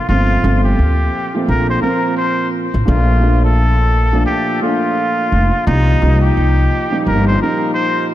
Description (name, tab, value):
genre	hip hop, boom-bap hip-hop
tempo	86 BPM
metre	4/4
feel	swing 60% on 16ths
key	Bb major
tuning	A4 = 441 Hz
part	trumpet with straight mute	melody	0.0-8.1 s	Eb4 to C5	-18 LUFS	equal	high-pass filter, low-pass filter, ping-pong delay
part	dark upright piano	accompaniment	0.0-8.1 s	Bb2 to Eb4	-18 LUFS	equal	cassette tape, high-pass filter, low-pass filter
part	upright bass	bass	0.1-7.3 s	F1 to D2	-13 LUFS	equal	none
room	moderate lush hall reverb, RT60 2.5 s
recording	dreamy mix soaked in reverb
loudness	-12 LUFS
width	side -13 dB against mid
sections	0.0-8.1 A section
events	none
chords	0.1 Gm11; 2.9 Bbmaj7; 5.7 F9sus4/C